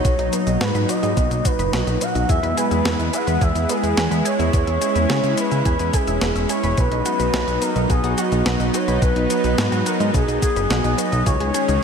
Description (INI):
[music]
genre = synthwave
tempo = 107 BPM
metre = 4/4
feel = straight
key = unclear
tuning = A4 = 437 Hz
[part]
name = expressive synth lead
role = melody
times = 0.0-11.8 s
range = F#4 to F#5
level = -24 LUFS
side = equal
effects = lush chorus, cassette tape, diffuse ambient delay
[part]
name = lush unison pad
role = sustained chords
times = 0.0-11.8 s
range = A#2 to E4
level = -23 LUFS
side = equal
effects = chorus, sidechain pumping
[part]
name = analog pluck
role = arpeggios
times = 0.0-11.8 s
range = B3 to B4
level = -29 LUFS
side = right 3 dB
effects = chorus, diffuse ambient delay
[part]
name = fat analog bass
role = bass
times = 0.0-11.8 s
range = E1 to C#3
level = -22 LUFS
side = equal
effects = none
[part]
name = clean 12-bit digital drum machine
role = drums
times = 0.0-11.8 s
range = hi-hat, shaker, snare drum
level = -27 LUFS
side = left 2 dB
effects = none
[part]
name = electronic kick drum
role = drums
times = 0.0-11.4 s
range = none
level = -20 LUFS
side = equal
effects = none
[sound]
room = moderate lush hall reverb, RT60 2.7 s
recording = dreamy mix soaked in reverb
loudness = -17 LUFS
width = side -6 dB against mid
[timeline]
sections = 0.0-11.8 A section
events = none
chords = 0.0 B; 2.3 E; 6.8 B; 11.3 C#sus2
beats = | 0.05 0.61 1.17 1.73 | 2.29 2.85 3.41 3.97 | 4.53 5.09 5.66 6.22 | 6.78 7.34 7.90 8.46 | 9.02 9.58 10.14 10.70 | 11.26 11.82